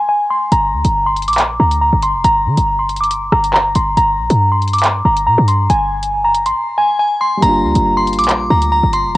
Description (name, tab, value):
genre	hip hop, drill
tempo	139 BPM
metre	4/4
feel	half-time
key	G phrygian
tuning	A4 = 440 Hz
part	glassy synth bell	melody	0.0-9.2 s	Ab5 to D6	-14 LUFS	equal	chorus, low-pass filter, cassette tape, tape echo
part	short 808-style bass	bass	0.5-9.2 s	F1 to D3	-17 LUFS	equal	none
part	drill drum kit	drums	0.5-9.2 s	handclaps, hi-hat, rim click	-19 LUFS	equal	cassette tape
part	dark grand piano	accompaniment	7.4-9.2 s	G3 to F4	-19 LUFS	equal	low-pass filter, cassette tape
room	little or no reverb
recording	home recording on cassette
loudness	-12 LUFS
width	side -17 dB against mid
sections	0.0-9.2 A section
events	break 0.0-0.5; filter sweep 0.0-7.4; drums muted 6.6-7.4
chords	0.0 Ab; 0.5 Gm; 4.0 Gmadd11; 5.7 Abmaj7(no3)/G; 7.4 Gm7